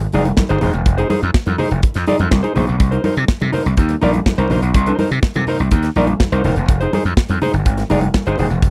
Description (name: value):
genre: disco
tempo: 124 BPM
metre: 4/4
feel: straight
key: unclear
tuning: A4 = 440 Hz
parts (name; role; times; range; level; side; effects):
- mellow electric guitar; accompaniment; 0.0-8.7 s; Eb4 to D5; -21 LUFS; equal; none
- gritty slap bass; bass; 0.0-8.7 s; Eb1 to C3; -19 LUFS; equal; overdrive
- modern studio drum kit; drums; 0.0-8.7 s; hi-hat, kick drum, snare drum; -18 LUFS; equal; none
- congas; percussion; 0.0-8.7 s; none; -25 LUFS; equal; none
room: little or no reverb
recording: dry, close 1970s-style studio recording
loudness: -16 LUFS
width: mono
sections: 0.0-8.7 A section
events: none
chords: 0.0 Fm7; 2.8 Cm7; 6.7 Fm7